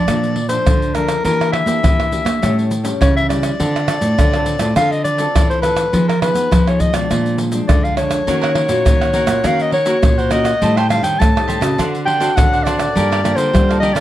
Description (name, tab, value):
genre	samba and choro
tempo	102 BPM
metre	4/4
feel	straight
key	Bb major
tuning	A4 = 440 Hz
part	breathy soprano saxophone	melody	0.0-14.0 s	Bb4 to A5	-18 LUFS	left 1 dB	none
part	nylon-string guitar	accompaniment	0.0-14.0 s	F2 to A4	-22 LUFS	left 3 dB	none
part	nylon-string guitar	bass	0.0-14.0 s	G2 to Cb4	-19 LUFS	right 1 dB	none
part	egg shaker, surdo, pandeiro and tamborim	percussion	0.1-14.0 s	none	-18 LUFS	equal	none
part	cavaquinho	accompaniment	8.3-14.0 s	D4 to A5	-24 LUFS	right 2 dB	none
room	light reverb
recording	dark, warm production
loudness	-13 LUFS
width	side -13 dB against mid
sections	0.0-14.0 A section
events	none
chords	0.0 Bbmaj7; 1.2 Em7b5; 2.4 A7; 3.6 Dm7; 5.9 Fm7b5; 7.1 Bb7; 8.3 Ebm7; 10.6 Am7b5; 11.8 D7; 13.0 Gm9